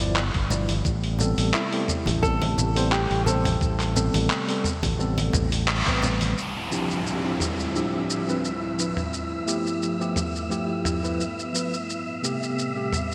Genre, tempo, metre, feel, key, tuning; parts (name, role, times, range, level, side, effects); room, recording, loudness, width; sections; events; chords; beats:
sunset chillout; 87 BPM; 4/4; swing 54% on 16ths; A minor; A4 = 443 Hz
tine electric piano; accompaniment; 0.0-13.0 s; C3 to D5; -31 LUFS; equal; digital delay
airy breathy pad; sustained chords; 0.0-13.1 s; D2 to E4; -34 LUFS; equal; chorus
modern bright fingered electric bass; bass; 0.0-6.3 s; G1 to A1; -28 LUFS; equal
dusty soul sampler-style drum kit; drums; 0.0-13.1 s; handclaps, hi-hat, shaker, toms; -31 LUFS; equal; studio reverb, gated reverb
electronic kick drum; drums; 0.3-6.0 s; -31 LUFS; equal; studio reverb
congas; percussion; 0.5-6.3 s; -34 LUFS; equal
flamenco guitar; melody; 1.5-5.6 s; E4 to A4; -31 LUFS; equal; digital delay
downlifter; sound effects; 6.4-11.9 s; -36 LUFS; equal
wind-like tuned noise texture; texture; 7.0-13.1 s; E5 to E6; -37 LUFS; equal; built-in reverb, analog chorus
wet lush hall reverb, RT60 2.8 s; bright 1980s-style digital production; -25 LUFS; mono
0.0-6.4 A section; 6.4-13.1 B section
band accent 5.7-6.0
0.0 G13; 0.9 Am9; 6.4 Dm11; 9.1 G13; 11.9 Am9
0.16 | 0.85 1.54 2.23 2.92 | 3.61 4.30 4.99 5.68 | 6.37 7.06 7.75 8.44 | 9.13 9.82 10.51 11.20 | 11.89 12.58